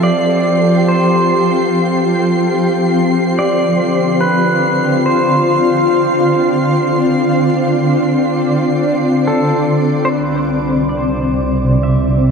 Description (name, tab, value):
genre	ambient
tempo	72 BPM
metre	4/4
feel	straight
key	unclear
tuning	A4 = 440 Hz
part	pedal steel guitar	melody	0.0-12.3 s	A4 to E5	-19 LUFS	right 1 dB	diffuse ambient delay
part	shimmering ambient pad	sustained chords	0.0-12.3 s	C3 to D5	-13 LUFS	equal	chorus, built-in reverb
part	warm studio violin section	texture	0.0-10.1 s	C4 to C7	-24 LUFS	right 1 dB	none
part	dark chamber double bass section	bass	10.1-12.3 s	C2	-20 LUFS	equal	none
room	wet cathedral reverb, RT60 5.3 s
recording	in a vast, echoing space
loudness	-12 LUFS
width	side -5 dB against mid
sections	0.0-10.1 A section; 10.1-12.3 B section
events	filter sweep on ambient pad 10.1-12.3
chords	0.0 F; 3.4 Dm7; 10.1 Cmaj7